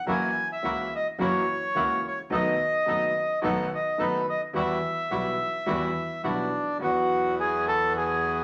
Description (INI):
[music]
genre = tango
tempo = 107 BPM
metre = 4/4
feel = rubato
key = unclear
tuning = A4 = 440 Hz
[part]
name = bandoneon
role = melody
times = 0.0-8.4 s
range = D4 to G#5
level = -28 LUFS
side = equal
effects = none
[part]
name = bright concert grand piano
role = accompaniment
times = 0.1-8.4 s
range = F#1 to F#4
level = -34 LUFS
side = equal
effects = none
[part]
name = bandoneon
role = stabs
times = 0.1-8.4 s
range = G3 to A4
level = -34 LUFS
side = equal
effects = none
[part]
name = clear double bass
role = bass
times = 0.1-8.4 s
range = F#1 to E2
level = -39 LUFS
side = equal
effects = none
[sound]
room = wet large studio reverb, RT60 0.9 s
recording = none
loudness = -26 LUFS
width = mono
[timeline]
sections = 0.0-6.8 A section; 6.8-8.4 B section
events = none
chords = 0.1 F#7; 2.3 B7; 4.5 Emadd9; 6.8 Esus2